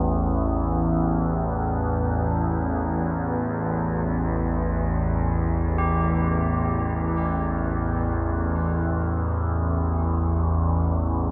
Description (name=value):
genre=dark ambient drone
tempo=free time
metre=none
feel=none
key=unclear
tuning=A4 = 439 Hz
part: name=overtone-sweeping drone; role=drone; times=0.0-11.3 s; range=A1 to E2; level=-24 LUFS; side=equal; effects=chorus, built-in reverb
part: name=tubular bells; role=arpeggios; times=5.8-11.3 s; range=G4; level=-36 LUFS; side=equal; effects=tape echo
room=wet huge ambient reverb, RT60 7.4 s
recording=dark, warm production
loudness=-24 LUFS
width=mono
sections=0.0-11.3 A section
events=fade-in on tubular bells 0.0-11.3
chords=0.0 A5